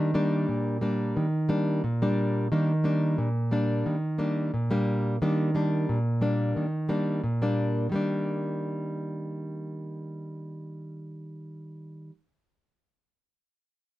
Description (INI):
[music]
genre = samba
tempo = 89 BPM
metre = 4/4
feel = straight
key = Eb major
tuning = A4 = 440 Hz
[part]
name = nylon-string guitar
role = solo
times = 0.0-12.1 s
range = Bb2 to D4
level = -26 LUFS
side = equal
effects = none
[sound]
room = light reverb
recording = none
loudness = -25 LUFS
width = side -16 dB against mid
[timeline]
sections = 0.0-5.2 A section; 5.2-7.9 B section; 7.9-10.6 C section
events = none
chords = 0.0 Ebmaj7